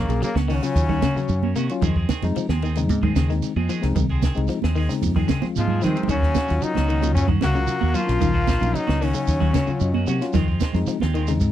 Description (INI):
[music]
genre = afrobeat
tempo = 113 BPM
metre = 4/4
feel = straight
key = Eb dorian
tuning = A4 = 440 Hz
[part]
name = brilliant trombone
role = melody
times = 0.0-1.5, 5.6-10.1 s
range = Bb3 to Gb4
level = -26 LUFS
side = left 3 dB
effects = none
[part]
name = bright baritone saxophone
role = second line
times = 0.0-1.5, 5.6-10.1 s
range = Bb2 to Gb3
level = -36 LUFS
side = left 10 dB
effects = none
[part]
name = growling tenor saxophone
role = second line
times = 0.0-1.5, 5.6-10.1 s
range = Db3 to Bb3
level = -34 LUFS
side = right 4 dB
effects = none
[part]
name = semi-hollow electric guitar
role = stabs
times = 0.0-11.3 s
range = Eb3 to Ab4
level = -33 LUFS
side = right 5 dB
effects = wide subtle chorus
[part]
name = fingered electric bass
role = bass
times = 0.0-11.5 s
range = Bb1 to Eb3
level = -22 LUFS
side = equal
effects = none
[part]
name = tine electric piano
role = accompaniment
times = 0.1-11.5 s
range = Gb3 to Gb5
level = -28 LUFS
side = left 6 dB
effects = fast stereo tremolo
[part]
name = compact cocktail drum kit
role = drums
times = 0.1-11.5 s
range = hi-hat, kick drum, ride cymbal, snare drum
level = -26 LUFS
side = equal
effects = none
[part]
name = congas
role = percussion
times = 0.1-11.1 s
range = none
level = -28 LUFS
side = right 14 dB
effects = none
[part]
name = shekere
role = percussion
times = 0.1-11.5 s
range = none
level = -33 LUFS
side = right 9 dB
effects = none
[part]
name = electric guitar at the edge of break-up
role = arpeggios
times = 0.2-11.5 s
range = Db3 to Bb3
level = -27 LUFS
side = left 6 dB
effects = phaser
[sound]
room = little or no reverb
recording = dry, close 1970s-style studio recording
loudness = -19 LUFS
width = side -11 dB against mid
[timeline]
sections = 0.0-11.5 A section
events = drum fill 5.4-6.1; tine electric piano fill 9.5-10.3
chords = 0.0 Ebm7; 1.8 Fm7; 6.1 Ebm7; 10.3 Fm7